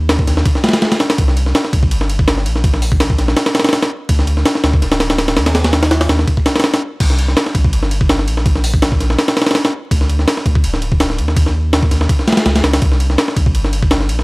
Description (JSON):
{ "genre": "drum and bass, jungle", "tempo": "165 BPM", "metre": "4/4", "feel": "swing 53% on 16ths", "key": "C minor", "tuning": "A4 = 440 Hz", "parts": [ { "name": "saturated sub bass", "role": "bass", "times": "0.0-14.2 s", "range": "D1 to Eb2", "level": "-16 LUFS", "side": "equal", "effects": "none" }, { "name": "breakbeat sampler-style drum kit", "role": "drums", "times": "0.1-14.2 s", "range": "crash cymbal, hi-hat, kick drum, ride cymbal, snare drum", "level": "-13 LUFS", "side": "equal", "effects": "none" } ], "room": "little or no reverb", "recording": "dry, gritty hardware recording, vinyl crackle", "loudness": "-12 LUFS", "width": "side -25 dB against mid", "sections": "0.0-7.0 A section; 7.0-14.2 A section", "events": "drop 0.0-7.0, 7.0-14.2", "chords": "none", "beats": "0.09 0.46 0.82 | 1.18 1.55 1.91 2.27 | 2.64 3.00 3.37 3.73 | 4.09 4.46 4.82 5.18 | 5.55 5.91 6.27 6.64 | 7.00 7.37 7.73 8.09 | 8.46 8.82 9.18 9.55 | 9.91 10.27 10.64 11.00 | 11.37 11.73 12.09 12.46 | 12.82 13.18 13.55 13.91" }